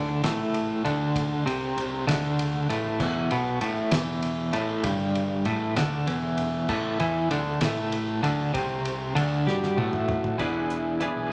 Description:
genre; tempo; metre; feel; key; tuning
psychedelic rock; 65 BPM (dotted quarters); 6/8; straight; unclear; A4 = 440 Hz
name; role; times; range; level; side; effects
twelve-string electric guitar; riff; 0.0-11.3 s; E2 to G#4; -28 LUFS; equal; tremolo
fuzz picked electric bass; bass; 0.0-11.3 s; E1 to G2; -37 LUFS; equal; overdrive
cloth-damped thuddy drum kit; drums; 0.2-11.2 s; crash cymbal, hi-hat, kick drum, ride cymbal, snare drum, toms; -35 LUFS; equal; none
congas; percussion; 0.2-11.2 s; none; barely audible; none; none
combo organ; melody; 9.5-11.3 s; E4 to G#4; -33 LUFS; equal; none
room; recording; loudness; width
moderate large studio reverb, RT60 1.0 s; none; -27 LUFS; mono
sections
0.0-10.4 A section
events
drum fill 2.2-3.0, 9.5-10.4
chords
0.0 A5; 3.0 E5; 6.7 A5; 10.4 E7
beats
0.22 | 1.15 2.07 | 3.00 3.92 | 4.84 5.77 | 6.69 7.62 | 8.54 9.47 | 10.40 11.32

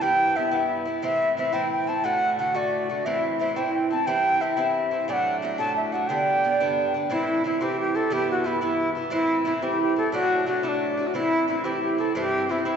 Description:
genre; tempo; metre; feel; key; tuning
celtic folk, Celtic jig; 119 BPM (dotted quarters); 6/8; straight; unclear; A4 = 438 Hz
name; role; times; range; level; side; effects
wooden flute; melody; 0.0-12.8 s; D4 to A5; -23 LUFS; left 1 dB; none
Irish bouzouki; accompaniment; 0.0-12.8 s; G2 to F#4; -26 LUFS; right 3 dB; none
room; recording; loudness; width
wet church reverb, RT60 3.0 s; recorded in a church or concert hall, nothing above 7.8 kHz; -22 LUFS; side -7 dB against mid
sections
0.0-7.1 A section; 7.1-12.8 A section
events
none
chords
0.0 Em/G; 1.0 Am; 2.0 D; 3.1 Am; 4.1 C; 5.1 D; 6.1 G; 7.1 Am; 8.1 Em/G; 9.1 Am; 10.1 D; 11.1 Am; 12.2 C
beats
| 0.02 0.53 | 1.03 1.54 | 2.04 2.55 | 3.06 3.56 | 4.07 4.57 | 5.08 5.58 | 6.09 6.59 | 7.10 7.61 | 8.11 8.62 | 9.12 9.63 | 10.13 10.64 | 11.14 11.65 | 12.15 12.66

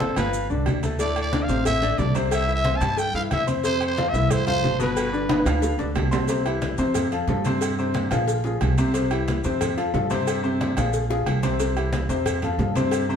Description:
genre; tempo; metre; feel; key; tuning
latin, salsa; 181 BPM; 4/4; straight; C major; A4 = 439 Hz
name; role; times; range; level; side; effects
growling trumpet; melody; 0.0-5.9 s; A4 to A5; -26 LUFS; equal; none
bright upright piano; accompaniment; 0.0-13.2 s; A2 to C6; -25 LUFS; left 2 dB; none
upright bass; bass; 0.0-13.2 s; G1 to G2; -26 LUFS; right 1 dB; none
agogo bells and timbales; percussion; 0.0-13.1 s; none; -31 LUFS; right 3 dB; none
congas; percussion; 0.0-13.2 s; none; -30 LUFS; equal; none
maracas; percussion; 0.0-13.2 s; none; -41 LUFS; right 6 dB; none
cowbell and bongos; percussion; 1.0-13.1 s; none; -32 LUFS; left 2 dB; none
room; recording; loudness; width
wet studio reverb, RT60 0.9 s; heard from further back in the room; -20 LUFS; side -7 dB against mid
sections
0.0-6.3 A section; 6.3-13.2 B section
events
drum fill 5.3-6.3, 10.8-11.6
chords
0.3 Gsus2; 1.0 Dsus2; 2.3 C; 3.6 F5; 5.0 G7; 6.3 C; 7.0 F; 7.6 G7sus4; 8.3 Bb5; 8.9 C; 9.6 F; 10.3 G7sus4; 10.9 Bb5; 11.6 C; 12.3 F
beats
0.00 0.33 0.66 | 0.99 1.33 1.66 1.99 | 2.32 2.65 2.98 3.31 | 3.64 3.98 4.31 4.64 | 4.97 5.30 5.63 5.96 | 6.29 6.62 6.95 7.29 | 7.62 7.95 8.28 8.61 | 8.94 9.27 9.61 9.94 | 10.27 10.60 10.93 11.26 | 11.60 11.93 12.26 12.59 | 12.92

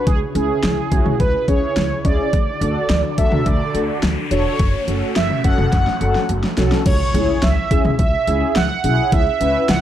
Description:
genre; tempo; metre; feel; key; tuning
synth-pop; 106 BPM; 4/4; straight; unclear; A4 = 442 Hz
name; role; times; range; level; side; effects
analog synth brass; melody; 0.0-9.8 s; G#4 to F#5; -21 LUFS; right 3 dB; chorus, tape echo
string machine, violas; sustained chords; 0.0-6.8 s; C#3 to A4; -28 LUFS; equal; ensemble chorus
upright bass; bass; 0.1-9.8 s; E1 to D2; -21 LUFS; equal; none
pop drum kit; drums; 0.1-9.8 s; crash cymbal, hi-hat, kick drum, snare drum, toms; -19 LUFS; equal; overdrive
mellow synth brass; accompaniment; 0.3-9.6 s; C#4 to B4; -23 LUFS; left 2 dB; chorus
noise sweep and impact; sound effects; 3.0-9.1 s; none; -29 LUFS; equal; none
room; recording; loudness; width
light reverb, digital ambience; dark, warm production; -15 LUFS; side -11 dB against mid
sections
0.0-6.9 A section; 6.9-9.8 B section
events
noise sweep 3.0-6.9; drum fill 5.7-6.9; impact 6.9-9.1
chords
0.1 C#m; 2.3 D; 4.6 F#m; 6.9 C#m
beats
| 0.07 0.63 1.20 1.76 | 2.33 2.90 3.46 4.03 | 4.59 5.16 5.73 6.29 | 6.86 7.42 7.99 8.56 | 9.12 9.69

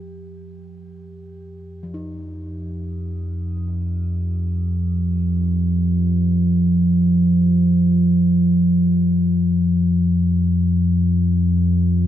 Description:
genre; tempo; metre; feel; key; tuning
dark ambient drone; free time; none; none; unclear; A4 = 440 Hz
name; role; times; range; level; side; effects
deep rumbling drone; drone; 1.9-12.1 s; F2 to F3; -17 LUFS; equal; built-in reverb
quartz singing bowl; texture; 0.0-12.1 s; G4; -48 LUFS; equal; shimmer reverb
gamelan-type bossed gongs; arpeggios; 1.8-8.9 s; F3 to Eb4; -39 LUFS; equal; tape echo
room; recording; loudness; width
moderate huge ambient reverb, RT60 6.9 s; none; -16 LUFS; side -11 dB against mid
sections
0.0-12.1 A section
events
fade-in on singing bowl 0.0-12.1; fade-in on kettle gongs 0.0-12.1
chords
0.0 Fsus2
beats
free time

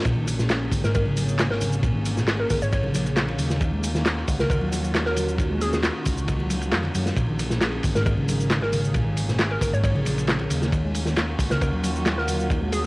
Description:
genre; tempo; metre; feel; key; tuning
breakbeat, breaks; 135 BPM; 4/4; straight; Eb minor; A4 = 440 Hz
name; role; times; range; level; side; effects
phased analog pad; sustained chords; 0.0-12.9 s; Eb3 to Ab4; -32 LUFS; equal; phaser, chorus, sidechain pumping, cassette tape
crunchy breakbeat drum kit; drums; 0.0-12.9 s; kick drum, ride cymbal, snare drum; -26 LUFS; equal; cassette tape
mellow tonewheel organ; riff; 0.1-12.9 s; Ab2 to Ab3; -27 LUFS; equal; chorus vibrato, slow rotary speaker, overdrive, cassette tape
overdriven picked electric bass; bass; 0.1-12.9 s; Ab1 to Gb2; -27 LUFS; equal; none
punchy analog drum machine; drums; 0.1-12.8 s; handclaps, hi-hat, shaker; -30 LUFS; equal; cassette tape
congas; percussion; 0.7-12.4 s; none; -34 LUFS; left 1 dB; none
hollow square pluck; melody; 0.8-12.8 s; Ab4 to Db5; -29 LUFS; equal; chorus, old record sound, cassette tape, analog delay
room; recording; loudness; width
light reverb, small room reverb; home recording on cassette, vinyl crackle; -21 LUFS; side -23 dB against mid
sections
0.0-12.9 A section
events
none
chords
0.1 Bbm7; 3.6 Ebm9; 7.2 Bbm7; 10.7 Ebm9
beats
| 0.06 0.50 0.95 1.39 | 1.84 2.28 2.72 3.17 | 3.61 4.06 4.50 4.95 | 5.39 5.84 6.28 6.72 | 7.17 7.61 8.06 8.50 | 8.95 9.39 9.84 10.28 | 10.72 11.17 11.61 12.06 | 12.50

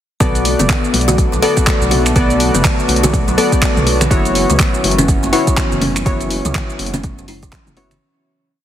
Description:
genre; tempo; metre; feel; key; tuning
afro house; 123 BPM; 4/4; swing 60% on 16ths; B minor; A4 = 438 Hz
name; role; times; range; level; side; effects
warm analog pad; sustained chords; 0.2-8.0 s; D3 to F#4; -23 LUFS; equal; chorus, sidechain pumping
kalimba; arpeggios; 0.2-7.9 s; C#3 to A4; -21 LUFS; left 2 dB; sidechain pumping, tape echo
warm analog keys; stabs; 0.2-7.9 s; B3 to D5; -19 LUFS; left 1 dB; chorus, sidechain pumping, tape echo
dark detuned saw bass; bass; 0.2-8.0 s; F#1 to C#2; -20 LUFS; equal; sidechain pumping
deep house drum kit; drums; 0.2-8.0 s; finger snaps, handclaps, hi-hat, shaker, toms; -19 LUFS; equal; overdrive
electronic kick drum; drums; 0.2-7.6 s; none; -16 LUFS; equal; overdrive
congas; percussion; 0.2-8.0 s; none; -23 LUFS; equal; none
room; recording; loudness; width
light reverb, digital ambience; heavily compressed radio sound, multiband compression; -12 LUFS; side -11 dB against mid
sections
0.2-8.0 drop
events
drop 0.2-8.0; fade-out 5.4-8.0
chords
0.2 Bm7; 4.1 F#7sus4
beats
| 0.21 0.69 1.18 1.67 | 2.16 2.65 3.13 3.62 | 4.11 4.60 5.08 5.57 | 6.06 6.55 7.04 7.52

